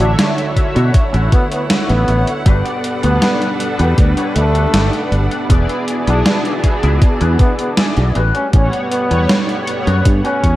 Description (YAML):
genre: vaporwave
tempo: 79 BPM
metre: 4/4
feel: straight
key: D major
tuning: A4 = 441 Hz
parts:
  - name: mellow flugelhorn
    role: melody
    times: 0.0-10.6 s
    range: A3 to D4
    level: -22 LUFS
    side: equal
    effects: tape echo
  - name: mellow synth brass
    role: accompaniment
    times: 0.0-10.6 s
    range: D3 to F#5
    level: -20 LUFS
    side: equal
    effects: ensemble chorus
  - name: clear studio string section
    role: sustained chords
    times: 0.0-10.6 s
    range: D3 to F#5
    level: -25 LUFS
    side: right 1 dB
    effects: none
  - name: electric guitar with an envelope filter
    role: riff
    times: 0.0-10.4 s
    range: C#4 to D5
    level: -27 LUFS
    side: left 3 dB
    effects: wide subtle chorus, tape echo
  - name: modern bright fingered electric bass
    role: bass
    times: 0.0-10.6 s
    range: E1 to B2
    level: -14 LUFS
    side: equal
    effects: tube saturation
  - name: gated 80s digital drum machine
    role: drums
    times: 0.0-10.6 s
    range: hi-hat, snare drum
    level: -18 LUFS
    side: right 1 dB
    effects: gated reverb, gated reverb snare, overdrive
  - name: electronic kick drum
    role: drums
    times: 0.6-10.6 s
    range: none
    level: -12 LUFS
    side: equal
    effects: overdrive
room: light reverb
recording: cassette tape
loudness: -12 LUFS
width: side -15 dB against mid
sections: 0.0-10.6 A section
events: none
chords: 0.0 Dmaj9; 2.5 Gmaj7; 5.5 E7; 8.2 A13